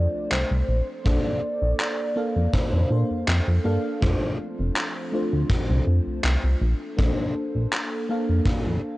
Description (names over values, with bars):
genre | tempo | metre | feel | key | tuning
vaporwave | 81 BPM | 4/4 | straight | unclear | A4 = 440 Hz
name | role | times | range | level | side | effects
warm velvety synth lead | melody | 0.0-3.6 s | C5 to D5 | -30 LUFS | equal | chorus, tape echo
FM electric piano with soft pad layer | accompaniment | 0.0-9.0 s | A3 to F5 | -29 LUFS | equal | lush chorus, tape echo
warbly tape-like pad | sustained chords | 0.0-9.0 s | F3 to A4 | -37 LUFS | right 1 dB | chorus, built-in reverb
chorused synth bass | bass | 0.0-8.8 s | F1 to Bb2 | -22 LUFS | equal | none
electronic handclaps | drums | 0.3-7.9 s | none | -29 LUFS | equal | gated reverb, overdrive, vintage 12-bit sampler grit
kick drum | drums | 1.1-8.6 s | none | -23 LUFS | equal | vintage 12-bit sampler grit
room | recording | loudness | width
light reverb | worn, warbling old tape, cassette tape, warbly pitch drift, nothing above 10.4 kHz | -21 LUFS | side -18 dB against mid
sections
0.0-9.0 A section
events
none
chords
0.0 F6; 0.7 Bbmaj9; 4.0 F6; 6.6 Bbmaj9